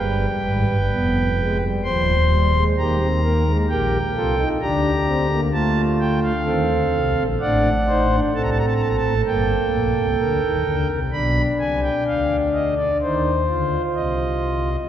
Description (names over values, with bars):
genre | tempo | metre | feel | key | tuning
classical, baroque-style 4-part fugue for pipe organ | 64 BPM | 4/4 | straight | unclear | A4 = 440 Hz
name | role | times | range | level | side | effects
pipe organ, principal | solo | 0.0-14.8 s | Eb1 to C6 | -18 LUFS | equal | none
room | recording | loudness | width
wet church reverb, RT60 3.3 s | recorded in a church or concert hall | -18 LUFS | side -10 dB against mid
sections
0.0-11.1 A section; 11.1-14.9 B section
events
none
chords
0.0 G7; 1.8 Cm/Eb; 3.7 Gm/Bb; 7.4 D7/A; 9.3 Gm; 11.1 G7/B (rootless); 13.0 Cm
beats
0.91 1.84 2.77 | 3.70 4.62 5.54 6.46 | 7.40 8.33 9.26 10.20 | 11.14 12.08 13.02 13.96